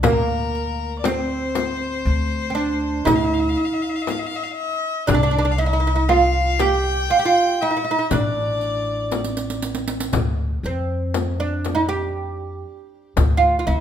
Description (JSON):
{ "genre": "Arabic maqam ensemble", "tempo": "119 BPM (eighths)", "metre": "10/8", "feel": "straight", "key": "D maqam bayati", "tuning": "A4 = 440 Hz", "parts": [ { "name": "oud", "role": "melody", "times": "0.0-13.8 s", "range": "Bb3 to G4", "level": "-21 LUFS", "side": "right 3 dB", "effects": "none" }, { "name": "bright violin", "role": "second line", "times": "0.0-9.6 s", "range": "Bb4 to G5", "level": "-25 LUFS", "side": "left 5 dB", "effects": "none" }, { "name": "upright bass", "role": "bass", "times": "0.0-13.8 s", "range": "A1 to F2", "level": "-23 LUFS", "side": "left 1 dB", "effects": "none" }, { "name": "darbuka", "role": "percussion", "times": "0.0-13.8 s", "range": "none", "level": "-30 LUFS", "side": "equal", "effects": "none" }, { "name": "frame drum", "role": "percussion", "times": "0.0-13.4 s", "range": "none", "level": "-26 LUFS", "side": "left 6 dB", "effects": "none" }, { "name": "riq", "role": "percussion", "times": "0.0-13.8 s", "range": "none", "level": "-30 LUFS", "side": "right 6 dB", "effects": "none" } ], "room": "moderate recital hall reverb, RT60 1.3 s", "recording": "minimal, uncompressed stereo recording", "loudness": "-18 LUFS", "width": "side -9 dB against mid", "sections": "0.0-10.1 A section; 10.1-13.8 B section", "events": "drum fill 9.1-10.1", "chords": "none" }